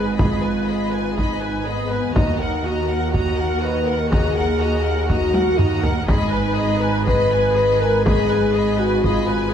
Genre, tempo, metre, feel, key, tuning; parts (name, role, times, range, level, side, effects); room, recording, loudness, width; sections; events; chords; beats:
cinematic, epic orchestral film score; 122 BPM; 4/4; straight; A4 = 440 Hz
warm symphonic violin section; melody; 0.0-9.5 s; Gb5 to Cb6; -30 LUFS; left 1 dB
warm symphonic violin section; second line; 0.0-9.5 s; Cb5 to Gb5; -28 LUFS; left 2 dB
rich studio viola section; accompaniment; 0.0-9.5 s; Gb4 to Cb5; -28 LUFS; equal
mellow French horn section; sustained chords; 0.0-9.5 s; Cb4 to Cb5; -22 LUFS; left 3 dB
rich symphonic cello section; bass; 0.0-9.5 s; Eb2 to Ab2; -25 LUFS; right 4 dB
rich symphonic double bass section; bass; 0.0-9.5 s; Ab1 to Eb2; -25 LUFS; right 3 dB
taiko ensemble; drums; 0.2-9.5 s; -22 LUFS; equal
moderate scoring stage reverb, RT60 1.7 s; -17 LUFS; side -8 dB against mid
0.0-9.5 A section
drum fill 5.3-6.1
0.0 Abm; 2.1 Ebm; 6.1 Abm
| 0.18 0.67 1.17 1.66 | 2.15 2.64 3.13 3.62 | 4.11 4.60 5.10 5.59 | 6.08 6.57 7.07 7.56 | 8.05 8.54 9.04 9.53